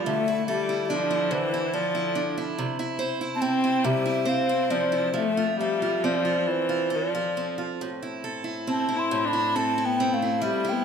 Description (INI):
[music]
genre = celtic folk, Celtic slow air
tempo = 70 BPM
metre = 3/4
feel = rubato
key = unclear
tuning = A4 = 440 Hz
[part]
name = mellow hollow wooden flute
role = melody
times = 0.0-10.8 s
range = C5 to C6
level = -27 LUFS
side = right 1 dB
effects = slapback echo
[part]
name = clear viola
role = second line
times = 0.0-10.8 s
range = E3 to E4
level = -28 LUFS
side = left 4 dB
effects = none
[part]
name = picked steel-string acoustic guitar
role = accompaniment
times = 0.0-10.8 s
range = A2 to C5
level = -28 LUFS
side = right 2 dB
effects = none
[sound]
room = moderate recital hall reverb, RT60 1.5 s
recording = none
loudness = -23 LUFS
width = side -7 dB against mid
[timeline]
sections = 0.0-10.8 A section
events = none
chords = 0.1 Dsus2; 2.6 C; 5.1 F; 7.8 Am